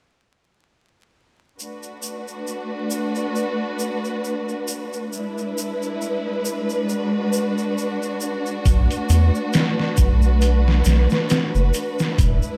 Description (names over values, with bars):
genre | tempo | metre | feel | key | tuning
trip hop | 68 BPM | 4/4 | swing 56% on 16ths | B dorian | A4 = 440 Hz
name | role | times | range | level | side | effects
dark studio string section | sustained chords | 1.6-12.6 s | G#3 to B4 | -26 LUFS | equal | none
tube shaker | percussion | 1.6-12.6 s | none | -35 LUFS | equal | none
round analog bass | bass | 8.7-12.4 s | E1 to E2 | -18 LUFS | equal | none
trip hop sampler-style drum kit | drums | 8.7-12.4 s | hi-hat, kick drum, snare drum | -23 LUFS | equal | studio reverb
room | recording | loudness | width
light reverb | vinyl crackle | -21 LUFS | mono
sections
1.6-12.6 A section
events
none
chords
1.6 Bm7; 5.1 E7; 8.7 Bm7